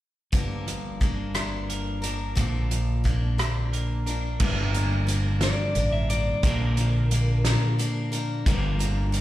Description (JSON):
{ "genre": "folk rock and heartland rock", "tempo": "59 BPM (dotted quarters)", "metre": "6/8", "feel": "straight", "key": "G minor", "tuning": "A4 = 440 Hz", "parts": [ { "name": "picked steel-string acoustic guitar", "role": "accompaniment", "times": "0.3-9.2 s", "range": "G2 to Bb4", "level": "-32 LUFS", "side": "left 4 dB", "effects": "slapback echo" }, { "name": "electric guitar at the edge of break-up", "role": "riff", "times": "0.3-9.2 s", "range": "G2 to Bb4", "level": "-29 LUFS", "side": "right 1 dB", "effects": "slapback echo" }, { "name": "upright bass", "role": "bass", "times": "0.3-9.2 s", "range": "G1 to Bb1", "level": "-26 LUFS", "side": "equal", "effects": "none" }, { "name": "loose indie drum kit", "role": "drums", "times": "0.3-9.2 s", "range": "crash cymbal, hi-hat, kick drum, rim click, snare drum", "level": "-27 LUFS", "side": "equal", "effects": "none" }, { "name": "lightly driven lead guitar", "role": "melody", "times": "5.4-7.8 s", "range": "Bb4 to E5", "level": "-31 LUFS", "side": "left 1 dB", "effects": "slapback echo, analog delay" } ], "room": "light reverb", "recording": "live gig heard through the venue's PA, recital hall reverb", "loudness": "-23 LUFS", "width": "side -14 dB against mid", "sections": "0.3-4.4 A section; 4.4-9.2 B section", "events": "none", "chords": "0.3 Gm7; 2.4 Bb; 4.4 Gm7; 6.4 Bb; 8.5 Gm7" }